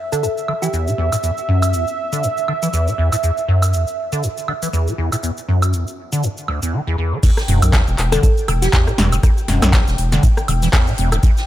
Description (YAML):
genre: acid house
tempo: 120 BPM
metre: 4/4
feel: swing 56% on 16ths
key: E minor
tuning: A4 = 440 Hz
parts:
  - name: warm analog pad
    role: sustained chords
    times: 0.0-11.5 s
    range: E5 to G5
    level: -26 LUFS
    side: right 3 dB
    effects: chorus, tremolo, sidechain pumping
  - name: thumb-piano-like synth pluck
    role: melody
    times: 0.1-1.0, 8.1-9.0 s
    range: G4 to A4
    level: -24 LUFS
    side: equal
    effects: chorus, phaser, tape echo
  - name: liquid acid bass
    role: riff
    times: 0.1-11.3 s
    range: D2 to E3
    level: -19 LUFS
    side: equal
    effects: phaser, tube saturation, wide subtle chorus, sidechain pumping
  - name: electro analog drum machine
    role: drums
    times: 0.1-11.5 s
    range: crash cymbal, handclaps, hi-hat, rim click, shaker, snare drum, woodblock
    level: -23 LUFS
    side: equal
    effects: none
  - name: electronic kick drum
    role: drums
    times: 7.2-11.3 s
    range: none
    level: -14 LUFS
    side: equal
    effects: none
  - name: soft-mallet drum kit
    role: drums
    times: 7.2-11.5 s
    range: hi-hat, snare drum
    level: -32 LUFS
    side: right 2 dB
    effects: sidechain pumping on hats, high-pass filter on hats, high-pass filter on snare, high-pass filter on room
  - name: saturated sub bass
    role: bass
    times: 7.5-11.2 s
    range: E1 to B1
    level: -17 LUFS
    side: equal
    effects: sidechain pumping
room: digital ambience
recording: none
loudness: -15 LUFS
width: side -13 dB against mid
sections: 0.0-7.2 A section; 7.2-11.5 B section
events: filter sweep on acid bass 0.0-7.2; drop 7.2-11.5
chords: 0.0 E5; 7.2 Em